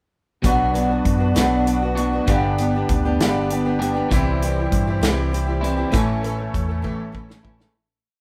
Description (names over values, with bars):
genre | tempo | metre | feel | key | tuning
folk rock and heartland rock | 66 BPM (dotted quarters) | 6/8 | straight | unclear | A4 = 443 Hz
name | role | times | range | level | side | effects
picked acoustic archtop guitar | accompaniment | 0.4-7.8 s | G2 to A4 | -26 LUFS | equal | none
musette accordion | sustained chords | 0.4-7.7 s | B3 to C#5 | -34 LUFS | equal | none
electric guitar at the edge of break-up | riff | 0.4-7.7 s | G2 to G4 | -26 LUFS | equal | none
hollow-body short-scale picked electric bass | bass | 0.4-7.7 s | G1 to G2 | -26 LUFS | equal | none
natural country drum kit | drums | 0.4-7.7 s | hi-hat, kick drum, snare drum | -26 LUFS | equal | none
room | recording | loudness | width
moderate large studio reverb, RT60 1.0 s | band playing live in one room | -20 LUFS | mono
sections
0.4-7.7 pre-chorus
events
fade-out 5.9-7.7; drum fill 6.8-7.7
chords
0.4 Bm; 2.3 G; 4.1 C; 5.9 A